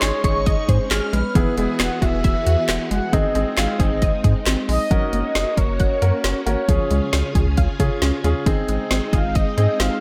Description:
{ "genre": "synth-pop", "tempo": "135 BPM", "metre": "4/4", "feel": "straight", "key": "Ab mixolydian", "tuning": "A4 = 441 Hz", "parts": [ { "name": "mellow horn-like synth lead", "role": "melody", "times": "0.0-10.0 s", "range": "Ab4 to F#5", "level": "-27 LUFS", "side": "equal", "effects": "chorus, tape echo" }, { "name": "clear concert grand piano", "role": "accompaniment", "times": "0.0-9.9 s", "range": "B3 to Bb4", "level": "-28 LUFS", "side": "equal", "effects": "none" }, { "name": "string machine, violins", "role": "sustained chords", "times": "0.0-10.0 s", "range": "Db3 to G#4", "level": "-32 LUFS", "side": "equal", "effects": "ensemble chorus" }, { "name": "unison pluck", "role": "arpeggios", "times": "0.0-9.9 s", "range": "Eb3 to Gb5", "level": "-31 LUFS", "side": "equal", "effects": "tape echo" }, { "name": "round analog bass", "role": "bass", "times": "0.0-9.9 s", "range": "E1 to Db3", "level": "-24 LUFS", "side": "equal", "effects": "none" }, { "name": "deep house drum kit", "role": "drums", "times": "0.0-9.9 s", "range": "handclaps, hi-hat, kick drum, snare drum", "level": "-23 LUFS", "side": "equal", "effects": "gated reverb" }, { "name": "shimmering bell with halo", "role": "second line", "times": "0.2-1.2 s", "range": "Db6 to F6", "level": "-31 LUFS", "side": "equal", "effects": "ensemble chorus, tape echo" } ], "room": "light reverb, digital ambience", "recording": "none", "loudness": "-19 LUFS", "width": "mono", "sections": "0.0-4.9 A section; 4.9-10.0 B section", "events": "none", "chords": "0.0 Absus4; 1.4 Eadd9; 3.1 Ab; 4.9 Gb; 6.7 Db; 8.5 Ab" }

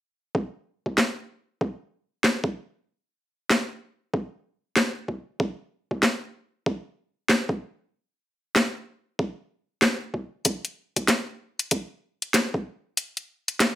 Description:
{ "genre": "glitch hop", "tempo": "95 BPM", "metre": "4/4", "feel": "swing 62% on 16ths", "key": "none", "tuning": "none", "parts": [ { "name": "electronic kick drum", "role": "drums", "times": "0.3-12.6 s", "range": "none", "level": "-26 LUFS", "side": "equal", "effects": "overdrive, high-pass filter on kick" }, { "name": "drum and bass drum kit", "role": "drums", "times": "1.0-13.8 s", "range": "hi-hat, snare drum", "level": "-20 LUFS", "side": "equal", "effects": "overdrive" } ], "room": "moderate studio reverb, RT60 0.6 s", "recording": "none", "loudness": "-25 LUFS", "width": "side -13 dB against mid", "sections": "0.3-13.8 A section", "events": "none", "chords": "none" }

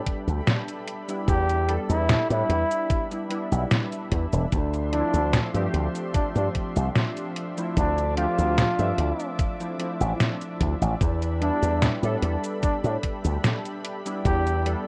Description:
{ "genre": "vaporwave", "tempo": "74 BPM", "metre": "4/4", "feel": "straight", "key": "unclear", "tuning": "A4 = 440 Hz", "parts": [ { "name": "warbly lo-fi synth keys", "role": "accompaniment", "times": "0.0-14.9 s", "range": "F3 to E5", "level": "-34 LUFS", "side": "equal", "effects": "ensemble chorus, vintage 12-bit sampler grit, tape echo" }, { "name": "lush unison pad", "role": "sustained chords", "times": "0.0-14.9 s", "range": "F3 to D6", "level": "-39 LUFS", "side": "equal", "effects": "chorus" }, { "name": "detuned 8-bit digital drum machine", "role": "drums", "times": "0.1-14.8 s", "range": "cabasa, hi-hat, snare drum", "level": "-28 LUFS", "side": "equal", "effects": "vintage 12-bit sampler grit, small room reverb" }, { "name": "electronic kick drum", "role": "drums", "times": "0.1-14.4 s", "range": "none", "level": "-29 LUFS", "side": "equal", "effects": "vintage 12-bit sampler grit, small room reverb" }, { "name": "slap bass with an envelope filter", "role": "bass", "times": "0.3-14.7 s", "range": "E1 to A2", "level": "-27 LUFS", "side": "equal", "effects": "none" }, { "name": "breathy flugelhorn", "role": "melody", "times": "1.3-14.7 s", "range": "D4 to G4", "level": "-31 LUFS", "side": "equal", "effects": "tape echo" } ], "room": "digital ambience", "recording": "rough home demo mix, cassette tape", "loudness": "-25 LUFS", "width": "mono", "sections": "0.0-14.9 A section", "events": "none", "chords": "0.0 Em7; 4.5 Dm9; 11.0 Em7" }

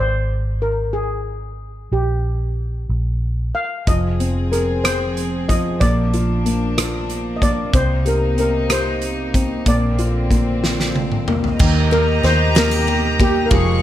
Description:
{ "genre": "six-eight pop ballad", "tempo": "62 BPM (dotted quarters)", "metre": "6/8", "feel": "straight", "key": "Eb major", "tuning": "A4 = 440 Hz", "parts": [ { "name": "steel pan", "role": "melody", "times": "0.0-13.8 s", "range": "G4 to F5", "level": "-22 LUFS", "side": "left 1 dB", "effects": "slapback echo" }, { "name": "vintage muted fingered electric bass", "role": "bass", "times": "0.0-13.8 s", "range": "F1 to Eb2", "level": "-21 LUFS", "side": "equal", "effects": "none" }, { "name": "felt-muted upright piano", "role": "accompaniment", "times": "3.9-13.8 s", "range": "Eb3 to Ab4", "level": "-23 LUFS", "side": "left 3 dB", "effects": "none" }, { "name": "warm studio string section", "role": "sustained chords", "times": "3.9-13.8 s", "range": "C3 to Db6", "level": "-24 LUFS", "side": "right 1 dB", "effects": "none" }, { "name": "loose indie drum kit", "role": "drums", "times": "3.9-13.7 s", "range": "crash cymbal, hi-hat, kick drum, ride cymbal, rim click, snare drum, toms", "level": "-20 LUFS", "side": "equal", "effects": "none" }, { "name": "picked steel-string acoustic guitar", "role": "arpeggios", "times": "11.6-13.8 s", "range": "Ab3 to G4", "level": "-25 LUFS", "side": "right 5 dB", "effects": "slapback echo" } ], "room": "light reverb, small room ambience", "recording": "none", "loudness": "-16 LUFS", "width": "side -12 dB against mid", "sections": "0.0-11.6 A section; 11.6-13.8 B section", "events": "drum fill 10.6-11.6", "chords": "0.0 Ab; 1.9 Bb5; 3.9 Fm; 5.8 Bb; 7.7 Cm7; 9.7 Bbadd9; 11.6 Eb" }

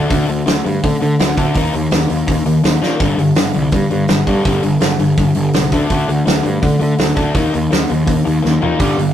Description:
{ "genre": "punk rock", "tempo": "166 BPM", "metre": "4/4", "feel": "straight", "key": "unclear", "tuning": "A4 = 440 Hz", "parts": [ { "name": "cranked stack guitar", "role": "riff", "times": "0.0-9.1 s", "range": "G2 to Eb4", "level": "-17 LUFS", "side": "left 3 dB", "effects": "overdrive" }, { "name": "fuzz picked electric bass", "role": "bass", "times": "0.0-9.1 s", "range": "G1 to D3", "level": "-17 LUFS", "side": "right 1 dB", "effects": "overdrive" }, { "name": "loose indie drum kit", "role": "drums", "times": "0.1-9.1 s", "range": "hi-hat, kick drum, snare drum, toms", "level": "-18 LUFS", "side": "right 1 dB", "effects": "none" }, { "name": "cranked stack guitar", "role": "riff", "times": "8.8-9.1 s", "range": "G2 to G3", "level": "-20 LUFS", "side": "right 7 dB", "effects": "overdrive" } ], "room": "light reverb", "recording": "rough rehearsal-room recording, tube saturation", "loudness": "-12 LUFS", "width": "side -10 dB against mid", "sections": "0.0-9.1 A section", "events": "drum fill 2.8, 8.4-8.8", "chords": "0.0 D5; 1.6 Eb5; 3.0 G5; 5.7 D5; 7.4 Eb5" }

